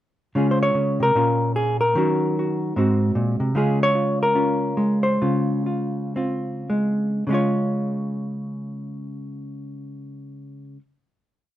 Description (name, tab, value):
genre	solo jazz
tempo	101-153 BPM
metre	4/4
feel	swing 64% on 8ths, rubato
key	Db major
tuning	A4 = 444 Hz
part	hollow-body jazz guitar	solo	0.4-10.8 s	Ab2 to Db5	-20 LUFS	equal	none
room	light reverb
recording	minimal, uncompressed stereo recording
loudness	-19 LUFS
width	side -13 dB against mid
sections	0.3-7.3 A section; 7.3-11.6 final chord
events	slowing down 3.5-7.3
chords	0.3 Dbmaj7; 1.1 Bbm; 1.9 Ebm7; 2.7 Ab7; 3.5 Dbmaj7; 7.3 Db